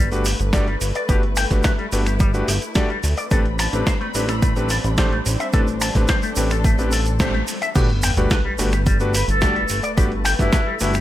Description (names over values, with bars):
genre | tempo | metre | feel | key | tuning
nu-disco, nu disco | 108 BPM | 4/4 | straight | G major | A4 = 440 Hz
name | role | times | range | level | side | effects
muted studio string section | sustained chords | 0.0-11.0 s | G3 to B5 | -30 LUFS | left 1 dB | sidechain pumping
electric guitar with an envelope filter | riff | 0.0-11.0 s | G3 to A5 | -27 LUFS | left 3 dB | lush chorus, vintage 12-bit sampler grit
chorused synth bass | bass | 0.0-11.0 s | G1 to D2 | -22 LUFS | equal | tube saturation, sidechain pumping
warm electric grand piano | accompaniment | 0.1-10.9 s | A3 to D5 | -26 LUFS | left 1 dB | sidechain pumping, analog delay
dusty soul sampler-style drum kit | drums | 0.1-11.0 s | crash cymbal, finger snaps, hi-hat, snare drum | -26 LUFS | equal | none
tube shaker | percussion | 0.1-11.0 s | none | -31 LUFS | right 5 dB | none
electronic kick drum | drums | 0.5-10.6 s | none | -19 LUFS | equal | none
sub drop | sound effects | 7.8-10.0 s | none | -27 LUFS | right 1 dB | none
bright reedy silver concert flute | melody | 9.1-10.9 s | E4 to B4 | -24 LUFS | left 1 dB | tape echo
room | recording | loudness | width
little or no reverb | none | -17 LUFS | side -13 dB against mid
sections
0.0-7.8 A section; 7.8-11.0 B section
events
band accent 7.2; drop 7.8-11.0; impact 7.8-10.0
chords
0.0 Gmaj9; 3.3 Am11; 7.8 Gmaj9